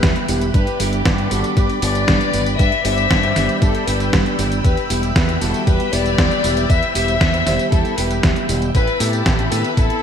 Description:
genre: italo disco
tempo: 117 BPM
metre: 4/4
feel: straight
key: E minor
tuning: A4 = 440 Hz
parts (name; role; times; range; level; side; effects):
- dark chamber violin section; melody; 0.0-10.0 s; D4 to E5; -21 LUFS; left 4 dB; vintage 12-bit sampler grit, ping-pong delay, shimmer reverb
- string machine, full ensemble; sustained chords; 0.0-10.0 s; D5 to F#6; -26 LUFS; equal; ensemble chorus, shimmer reverb
- mellow electric guitar; stabs; 0.0-10.0 s; G3 to A4; -23 LUFS; right 1 dB; shimmer reverb
- fingered electric bass with an envelope filter; bass; 0.0-9.9 s; E1 to A2; -22 LUFS; equal; none
- detuned 8-bit digital drum machine; drums; 0.0-10.0 s; hi-hat, snare drum, tambourine; -22 LUFS; right 1 dB; gated reverb
- electronic kick drum; drums; 0.0-9.9 s; none; -18 LUFS; equal; none
room: moderate plate reverb, RT60 1.5 s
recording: bright 1980s-style digital production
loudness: -15 LUFS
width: side -8 dB against mid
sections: 0.0-10.0 A section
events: none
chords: 0.0 Em; 0.5 G; 4.6 Em; 8.7 Amadd9

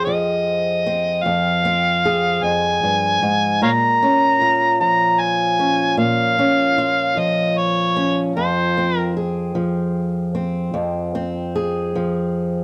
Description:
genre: acoustic country blues, solo or duo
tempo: 50 BPM (dotted quarters)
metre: 12/8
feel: straight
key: F minor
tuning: A4 = 440 Hz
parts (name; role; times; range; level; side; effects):
- overdriven harmonica; melody; 0.0-9.2 s; C5 to Bb5; -20 LUFS; equal; none
- fingerpicked old ladder-braced acoustic guitar; accompaniment; 0.0-12.6 s; F2 to Ab4; -22 LUFS; equal; none
room: light reverb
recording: none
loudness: -19 LUFS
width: mono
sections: 0.0-12.6 A section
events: none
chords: 0.0 Fm; 3.6 Bbm; 8.4 Fm

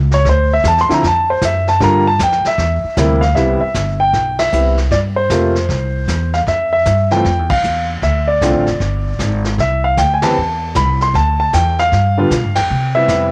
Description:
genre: jazz piano trio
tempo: 154 BPM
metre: 4/4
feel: swing 65% on 8ths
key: C major from 3.4 s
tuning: A4 = 441 Hz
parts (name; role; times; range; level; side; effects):
- upright bass; bass; 0.0-13.3 s; F1 to C3; -19 LUFS; equal; transformer saturation
- warm concert grand piano; melody; 0.1-13.3 s; C3 to C6; -17 LUFS; equal; plate reverb
- vintage brush drum kit; drums; 0.1-13.3 s; brushed snare drum, hi-hat, kick drum, ride cymbal, snare drum; -27 LUFS; equal; cassette tape
room: moderate studio ambience, RT60 0.5 s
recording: home recording on cassette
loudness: -15 LUFS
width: mono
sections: 0.0-3.4 A section; 3.4-13.3 B section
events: grand piano solo 0.0-3.4; band accent 4.3, 7.4, 10.2, 12.5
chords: 0.3 Dm9; 1.8 Gm7; 2.6 C7; 3.4 Cmaj7; 4.9 Gm11; 5.7 C; 6.5 Fmaj7(no3); 8.0 Dm7; 8.8 G5; 9.6 Cmaj7; 11.1 Dsus2; 11.9 G7; 12.7 Cmaj7

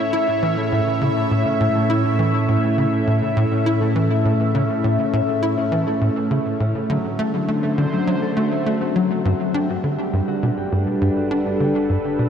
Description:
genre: ambient, sequencer-driven space music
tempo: 102 BPM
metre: 4/4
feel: straight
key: A major, G major from 9.2 s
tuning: A4 = 440 Hz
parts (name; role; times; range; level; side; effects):
- phased analog pad; sustained chords; 0.0-12.3 s; A2 to E5; -22 LUFS; right 1 dB; phaser, chorus, shimmer reverb
- concert harp; arpeggios; 0.0-12.3 s; F#3 to G5; -23 LUFS; moving between left 7 dB and right 1 dB; auto-pan, low-pass filter, analog delay, shimmer reverb
- bubbling stepped-filter texture; texture; 0.0-9.3 s; E5; -32 LUFS; right 3 dB; chorus, built-in reverb, shimmer reverb
- tight sequencer bass; riff; 0.1-12.3 s; G2 to E4; -22 LUFS; equal; wide subtle chorus, cassette tape, analog delay
- analog drone; bass; 10.1-12.3 s; G1; -46 LUFS; right 1 dB; none
room: wet huge ambient reverb, RT60 8.1 s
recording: dreamy mix soaked in reverb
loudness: -17 LUFS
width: side -8 dB against mid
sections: 0.0-9.2 A section; 9.2-12.3 B section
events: filter sweep on harp 9.2-12.3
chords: 0.0 A; 6.9 D7; 9.2 Gmaj7

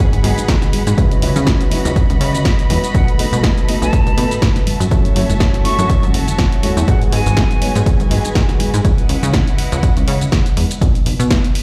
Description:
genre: filtered disco house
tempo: 122 BPM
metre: 4/4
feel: swing 55% on 16ths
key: unclear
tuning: A4 = 440 Hz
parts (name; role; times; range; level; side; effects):
- dark grand piano; accompaniment; 0.0-8.8 s; F#3 to D#5; -25 LUFS; equal; phaser, sidechain pumping
- muted chamber violin section; sustained chords; 0.0-10.8 s; E4 to B5; -29 LUFS; equal; sidechain pumping
- plucky analog bass; bass; 0.0-11.5 s; F#1 to D#3; -20 LUFS; equal; tube saturation, sidechain pumping
- punchy analog drum machine; drums; 0.0-11.6 s; hi-hat, shaker, snare drum; -25 LUFS; equal; sidechain pumping on hats, sidechain pumping on perc
- maracas and congas; percussion; 0.0-10.8 s; none; -29 LUFS; equal; none
- electronic kick drum; drums; 0.5-11.4 s; none; -18 LUFS; equal; none
- breathy bright concert flute; melody; 2.9-7.8 s; F#5 to C#6; -27 LUFS; equal; sidechain pumping, tape echo
room: small room ambience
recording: played on a big sound system in a bare room, large studio reverb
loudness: -15 LUFS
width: mono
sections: 0.0-11.6 A section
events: none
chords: 0.0 G#m7; 1.0 C#m11; 2.9 B7; 4.7 F#m7; 6.9 G#m7; 8.8 C#m11; 10.8 N.C.

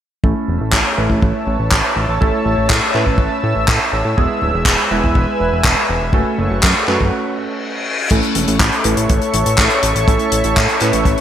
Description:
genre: italo disco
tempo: 122 BPM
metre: 4/4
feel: straight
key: A major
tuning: A4 = 441 Hz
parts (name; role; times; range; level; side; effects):
- lush unison pad; sustained chords; 0.9-11.2 s; A4 to E6; -20 LUFS; equal; chorus
- warm electric grand piano; stabs; 0.2-11.2 s; G#3 to B4; -21 LUFS; right 2 dB; wide subtle chorus, low-pass filter
- fat analog bass; bass; 0.2-11.2 s; D1 to A2; -20 LUFS; equal; none
- kick drum; drums; 0.2-11.2 s; none; -17 LUFS; equal; studio reverb
- damped 70s drum kit; drums; 0.7-11.2 s; crash cymbal, handclaps, hi-hat; -18 LUFS; left 1 dB; studio reverb, gated reverb
- reverse cymbal; sound effects; 7.3-8.1 s; none; -24 LUFS; left 4 dB; none
room: moderate lush hall reverb, RT60 2.2 s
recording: bright 1980s-style digital production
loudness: -13 LUFS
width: side -10 dB against mid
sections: 0.2-8.1 A section; 8.1-11.2 B section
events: filter sweep on electric grand piano 0.2-8.1, 8.1-11.2; break 7.1-8.1; reverse cymbal 7.3-8.1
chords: 0.2 A; 4.2 E; 6.1 F#m; 8.1 A

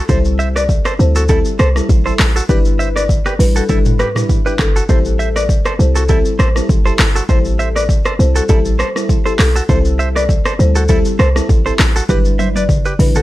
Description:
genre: afrobeats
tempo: 100 BPM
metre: 4/4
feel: swing 55% on 16ths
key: unclear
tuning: A4 = 440 Hz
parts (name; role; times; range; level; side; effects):
- direct-recorded clean electric guitar; riff; 0.0-13.2 s; E4 to E5; -22 LUFS; right 4 dB; tape echo
- folk marimba with medium mallets; melody; 0.1-13.2 s; A4 to D5; -21 LUFS; left 1 dB; none
- FM electric piano with soft pad layer; accompaniment; 0.1-13.2 s; G3 to B4; -22 LUFS; left 2 dB; chorus, phaser
- short 808-style bass; bass; 0.1-13.2 s; G1 to D2; -14 LUFS; equal; none
- afro-pop drum kit; drums; 0.1-13.2 s; handclaps, hi-hat, kick drum, rim click, shaker, toms; -16 LUFS; equal; overdrive
room: light reverb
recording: dark, warm production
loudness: -11 LUFS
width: side -16 dB against mid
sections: 0.0-13.2 A section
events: drum fill 12.1-13.2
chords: 0.1 C6; 2.5 G6; 9.7 C6; 12.1 G6

